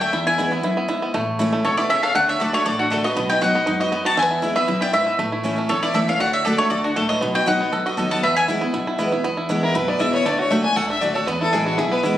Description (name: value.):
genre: bluegrass.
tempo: 237 BPM.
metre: 4/4.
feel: straight.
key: E mixolydian.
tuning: A4 = 444 Hz.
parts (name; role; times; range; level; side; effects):
bluegrass banjo; melody; 0.0-12.2 s; F#3 to A4; -24 LUFS; right 2 dB; none.
mandolin; melody; 0.0-8.4 s; F#4 to A5; -20 LUFS; left 1 dB; none.
clear fiddle; second line; 0.0-12.0 s; D4 to G#5; -25 LUFS; left 2 dB; none.
picked steel-string acoustic guitar; accompaniment; 0.0-12.2 s; E2 to F#4; -24 LUFS; left 1 dB; none.
upright bass; bass; 0.0-12.2 s; E1 to F#2; -32 LUFS; left 1 dB; none.
room: light reverb.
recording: recorded on a phone in the room, studio reverb, compression.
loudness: -18 LUFS.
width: side -12 dB against mid.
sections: 0.0-1.1 A section; 1.1-9.2 B section; 9.2-12.2 C section.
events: break 0.6-1.1; fiddle solo 9.2-12.2.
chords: 0.1 E; 1.1 A; 2.2 D; 3.2 B; 4.2 E; 5.2 A; 6.2 D; 7.2 B; 8.2 E; 10.3 D; 11.3 E.